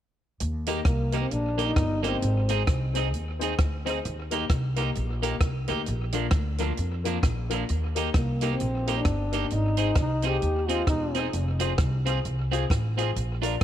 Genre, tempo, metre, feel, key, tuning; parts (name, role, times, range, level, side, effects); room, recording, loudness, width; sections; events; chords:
ska; 132 BPM; 4/4; swing 59% on 8ths; Eb major; A4 = 439 Hz
upright bass; bass; 0.4-13.6 s; Fb1 to F2; -28 LUFS; equal
compact cocktail drum kit; drums; 0.4-13.6 s; hi-hat, kick drum, rim click; -28 LUFS; equal; tape echo
electric guitar at the edge of break-up; accompaniment; 0.7-13.6 s; F3 to Bb4; -32 LUFS; right 12 dB
dark upright piano; stabs; 0.7-13.5 s; Bb3 to D5; -33 LUFS; left 9 dB
dark trombone; melody; 0.9-2.5, 8.2-11.2 s; Bb3 to G4; -30 LUFS; left 1 dB; tape echo
light reverb; 1960s-style stereo with parts hard left and right; -24 LUFS; side -11 dB against mid
0.4-13.6 A section
0.4 Eb; 2.2 Ab; 4.0 Eb; 5.9 Bb; 7.7 Eb; 9.5 Ab; 11.3 Fm